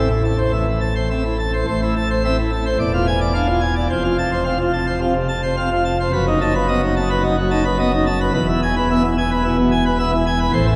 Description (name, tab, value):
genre	classical, organ toccata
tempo	108 BPM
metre	4/4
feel	straight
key	A minor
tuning	A4 = 440 Hz
part	pipe organ, plenum	solo	0.0-10.8 s	E1 to A5	-18 LUFS	equal	none
room	wet cathedral reverb, RT60 5.4 s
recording	recorded in a church or concert hall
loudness	-19 LUFS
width	mono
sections	0.0-1.7 A section; 1.7-10.8 A section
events	none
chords	0.0 Am; 2.8 E7b9; 3.9 F; 6.1 B7/F#; 8.3 E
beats	0.53 1.10 | 1.67 2.24 2.79 3.35 | 3.90 4.45 5.01 5.57 | 6.12 6.68 7.24 7.79 | 8.34 8.89 9.44 9.99 | 10.53